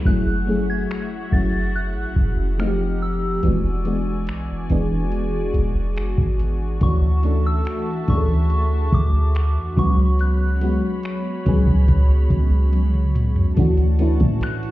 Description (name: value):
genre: contemporary R&B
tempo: 71 BPM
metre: 4/4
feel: straight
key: unclear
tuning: A4 = 441 Hz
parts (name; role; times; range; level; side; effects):
- FM electric piano with soft pad layer; accompaniment; 0.0-14.7 s; E3 to A4; -23 LUFS; left 1 dB; chorus, phaser
- warm studio string section; sustained chords; 0.0-14.7 s; Eb4 to B5; -35 LUFS; left 1 dB; none
- soft synth bell; melody; 0.1-14.7 s; C#6 to A6; -31 LUFS; equal; chorus, phaser, tape echo
- clean 808-style bass; bass; 0.1-14.7 s; E1 to A2; -20 LUFS; equal; none
- booming analog drum machine; drums; 0.1-14.7 s; finger snaps, hi-hat, kick drum, toms; -20 LUFS; equal; none
- celesta; texture; 14.0-14.7 s; B4; -39 LUFS; right 6 dB; tape echo
room: digital ambience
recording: heard muffled through a wall, stone room reverb, EQ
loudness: -17 LUFS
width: side -16 dB against mid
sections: 0.0-13.6 A section; 13.6-14.7 B section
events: drum fill 12.7-13.6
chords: 0.1 F#m9; 2.6 F9; 3.4 E9; 6.8 Dmaj9; 9.8 C#7sus4; 13.6 Dmaj7